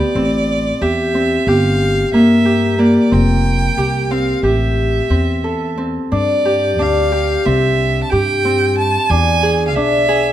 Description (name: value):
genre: contemporary instrumental, chamber music in an uneven meter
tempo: 182 BPM (eighths)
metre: 9/8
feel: straight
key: A minor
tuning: A4 = 441 Hz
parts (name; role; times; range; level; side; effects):
- clear violin; melody; 0.0-10.3 s; D5 to A5; -20 LUFS; right 3 dB; none
- Celtic harp; arpeggios; 0.0-10.3 s; Bb3 to A4; -15 LUFS; left 1 dB; none
- upright bass; bass; 0.2-10.3 s; F1 to G2; -19 LUFS; equal; none
room: moderate recital hall reverb, RT60 1.6 s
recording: close, detailed microphones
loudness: -13 LUFS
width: side -12 dB against mid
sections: 0.0-6.1 A section; 6.1-10.3 B section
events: none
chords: 0.2 Am7; 1.5 Gm7; 3.1 Fsus2; 4.4 Am7; 6.1 G5; 7.4 C5; 9.1 E7